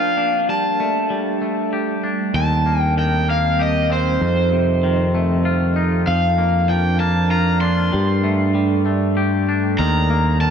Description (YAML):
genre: post-rock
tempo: 97 BPM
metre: 3/4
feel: straight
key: G minor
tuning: A4 = 439 Hz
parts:
  - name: raw garage guitar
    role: melody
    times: 0.0-10.5 s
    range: C5 to C6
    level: -21 LUFS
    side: equal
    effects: overdrive, analog delay
  - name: warbly tape-like pad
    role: sustained chords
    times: 0.0-10.5 s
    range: F3 to Eb5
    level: -24 LUFS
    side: right 2 dB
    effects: chorus, built-in reverb, tremolo
  - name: twangy electric guitar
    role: arpeggios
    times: 0.0-10.5 s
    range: F2 to G4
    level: -24 LUFS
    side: left 3 dB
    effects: analog delay
  - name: growling picked electric bass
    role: bass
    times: 2.3-10.5 s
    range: Eb2 to G2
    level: -18 LUFS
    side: equal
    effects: overdrive
room: light reverb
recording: dark, warm production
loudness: -16 LUFS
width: side -7 dB against mid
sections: 0.0-10.5 A section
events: none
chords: 0.5 Gsus2; 2.4 Eb6; 4.2 F7; 6.1 Bb/F; 7.9 Gsus2; 9.8 Eb6